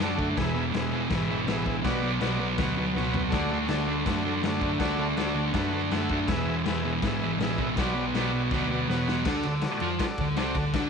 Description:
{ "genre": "garage rock duo or trio", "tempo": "162 BPM", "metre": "4/4", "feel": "straight", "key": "unclear", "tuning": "A4 = 440 Hz", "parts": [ { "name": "combo organ", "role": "sustained chords", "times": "0.0-10.9 s", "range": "F#4 to E5", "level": "-33 LUFS", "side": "equal", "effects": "none" }, { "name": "thick fuzz guitar", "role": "riff", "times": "0.0-10.9 s", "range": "E2 to F4", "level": "-27 LUFS", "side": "right 1 dB", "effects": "distortion" }, { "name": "hollow-body short-scale picked electric bass", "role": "bass", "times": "0.0-10.9 s", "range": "E1 to F#2", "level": "-34 LUFS", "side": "right 1 dB", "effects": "overdrive" }, { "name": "raw garage drum kit", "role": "drums", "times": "0.0-10.8 s", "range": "crash cymbal, kick drum, ride cymbal, snare drum, toms", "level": "-32 LUFS", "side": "left 3 dB", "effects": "none" } ], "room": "moderate echo chamber reverb, RT60 1.3 s, small room ambience", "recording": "1960s-style stereo", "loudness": "-24 LUFS", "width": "side -6 dB against mid", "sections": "0.0-9.3 A section; 9.3-10.9 B section", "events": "drum fill 3.0-3.3, 8.5-9.3", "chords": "0.4 E; 1.8 Bm; 3.3 D; 6.3 E; 7.8 Bm; 9.3 D", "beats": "0.00 | 0.37 0.74 1.11 1.47 | 1.84 2.21 2.58 2.95 | 3.32 3.69 4.06 4.43 | 4.80 5.17 5.54 5.91 | 6.28 6.65 7.03 7.40 | 7.77 8.14 8.51 8.88 | 9.26 9.63 10.00 10.37 | 10.75" }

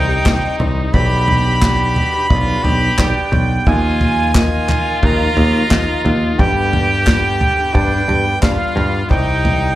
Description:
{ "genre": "indie folk with a building arrangement", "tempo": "88 BPM", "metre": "4/4", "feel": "straight", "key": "unclear", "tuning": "A4 = 440 Hz", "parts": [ { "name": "accordion", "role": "melody", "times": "0.0-9.8 s", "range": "F5 to B5", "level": "-19 LUFS", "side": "right 2 dB", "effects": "slapback echo" }, { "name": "stopped French horn", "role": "second line", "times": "0.0-9.8 s", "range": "D4 to G4", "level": "-22 LUFS", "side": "left 1 dB", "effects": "none" }, { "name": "bright upright piano", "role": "accompaniment", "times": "0.0-9.8 s", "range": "G1 to Eb5", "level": "-25 LUFS", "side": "left 1 dB", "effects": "slapback echo" }, { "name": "picked twelve-string acoustic guitar", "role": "accompaniment", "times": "0.0-9.8 s", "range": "C3 to C5", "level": "-28 LUFS", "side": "left 10 dB", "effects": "slapback echo" }, { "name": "picked electric bass", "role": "bass", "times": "0.0-9.8 s", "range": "B1 to G2", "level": "-18 LUFS", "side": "equal", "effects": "none" }, { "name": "unplugged drum kit", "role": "drums", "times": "0.3-9.6 s", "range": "kick drum, snare drum, toms", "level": "-18 LUFS", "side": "equal", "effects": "none" }, { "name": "group handclap", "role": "percussion", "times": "0.3-8.6 s", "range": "none", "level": "-23 LUFS", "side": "left 2 dB", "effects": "none" } ], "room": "little or no reverb", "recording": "live gig heard through the venue's PA, club reverb", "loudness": "-13 LUFS", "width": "side -15 dB against mid", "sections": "0.0-9.8 A section", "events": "none", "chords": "0.0 Cm; 0.9 G/B; 3.7 Ebsus2; 6.4 G; 9.1 Cm", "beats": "0.26 | 0.94 1.62 2.30 2.98 | 3.67 4.35 5.03 5.71 | 6.39 7.07 7.75 8.43 | 9.11" }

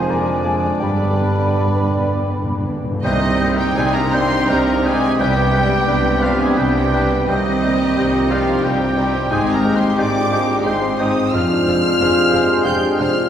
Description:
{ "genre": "classical, romantic movement for piano and orchestra", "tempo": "80-94 BPM", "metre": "3/4", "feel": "rubato", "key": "C minor", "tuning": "A4 = 440 Hz", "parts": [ { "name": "rich studio violin section", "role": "melody", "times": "0.0-13.3 s", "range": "B4 to G6", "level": "-25 LUFS", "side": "left 2 dB", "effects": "none" }, { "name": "warm concert grand piano", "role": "melody", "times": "0.0-13.3 s", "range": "C2 to D6", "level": "-20 LUFS", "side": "equal", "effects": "none" }, { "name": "mellow hollow silver concert flute", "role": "second line", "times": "0.0-13.3 s", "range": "Ab5 to G6", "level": "-29 LUFS", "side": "left 1 dB", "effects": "none" }, { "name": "rich studio violin section", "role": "second line", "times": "0.0-13.1 s", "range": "D4 to D5", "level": "-28 LUFS", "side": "left 2 dB", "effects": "none" }, { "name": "warm clarinet", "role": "second line", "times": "0.0-13.3 s", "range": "D4 to C5", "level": "-30 LUFS", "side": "equal", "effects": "none" }, { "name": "warm oboe", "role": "second line", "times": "0.0-13.3 s", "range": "Eb4 to G5", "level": "-26 LUFS", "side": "right 1 dB", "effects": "none" }, { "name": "mellow bassoon", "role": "accompaniment", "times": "0.0-13.3 s", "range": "F3 to Ab3", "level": "-27 LUFS", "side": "right 1 dB", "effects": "none" }, { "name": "rich studio viola section", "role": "accompaniment", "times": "0.0-13.1 s", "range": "D3 to D4", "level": "-29 LUFS", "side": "right 2 dB", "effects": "none" }, { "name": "mellow French horn section", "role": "sustained chords", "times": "0.0-13.3 s", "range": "Eb3 to G4", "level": "-24 LUFS", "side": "left 1 dB", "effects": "none" }, { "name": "mellow trombone section", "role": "sustained chords", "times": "0.0-13.3 s", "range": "G2 to D4", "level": "-27 LUFS", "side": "right 2 dB", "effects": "none" }, { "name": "rich studio double bass section", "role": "bass", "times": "0.0-13.1 s", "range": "F1 to C2", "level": "-25 LUFS", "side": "right 1 dB", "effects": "none" }, { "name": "warm studio cello section", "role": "bass", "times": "0.0-13.1 s", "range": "F2 to C3", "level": "-26 LUFS", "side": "right 1 dB", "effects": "none" }, { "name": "timpani", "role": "percussion", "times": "0.8-3.0 s", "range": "G2", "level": "-27 LUFS", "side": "equal", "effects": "none" }, { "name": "mellow trumpet", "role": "stabs", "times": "3.0-13.3 s", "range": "G4 to C5", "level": "-25 LUFS", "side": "equal", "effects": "none" } ], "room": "wet concert hall reverb, RT60 2.1 s", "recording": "heard from further back in the room", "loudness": "-14 LUFS", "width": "side -9 dB against mid", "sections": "0.0-3.0 A section; 3.0-13.3 B section", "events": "timpani fill 0.8-3.0", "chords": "0.1 Ddim/F; 0.8 G; 3.0 Cm; 5.2 G/C; 7.3 Cm; 9.3 Abmaj7; 11.3 Dm7b5/F", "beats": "0.10 | 0.81 1.56 2.29 | 3.03 3.77 4.49 | 5.20 5.88 6.57 | 7.28 7.97 8.63 | 9.30 9.97 10.65 | 11.33 12.00 12.65" }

